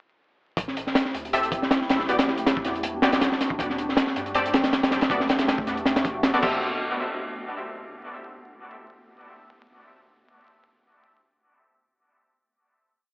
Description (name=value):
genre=drum and bass, jungle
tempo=159 BPM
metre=4/4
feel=swing 53% on 16ths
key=A dorian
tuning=A4 = 440 Hz
part: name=granular cloud pad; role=sustained chords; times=1.2-6.6 s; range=G3 to G4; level=-32 LUFS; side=equal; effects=built-in reverb
part: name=soft dub sub bass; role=bass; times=0.6-6.6 s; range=E1 to G2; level=-43 LUFS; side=equal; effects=none
part: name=crunchy breakbeat drum kit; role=drums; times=0.6-6.5 s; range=crash cymbal, hi-hat, kick drum, snare drum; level=-23 LUFS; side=equal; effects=none
part: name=orchestra-hit-like synth stab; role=stabs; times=1.3-6.6 s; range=B3 to E5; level=-27 LUFS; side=equal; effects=built-in reverb, dub echo
room=moderate plate reverb, RT60 1.2 s, studio reverb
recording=echo-heavy mix, vinyl crackle, AM radio sound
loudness=-21 LUFS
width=side -29 dB against mid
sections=0.6-6.6 drop; 6.6-8.1 final hit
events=drop 0.6-6.6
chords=0.6 Am7; 2.1 Gmaj7/B; 3.6 D7sus4; 5.1 Bm7; 6.4 Am7; 6.6 N.C.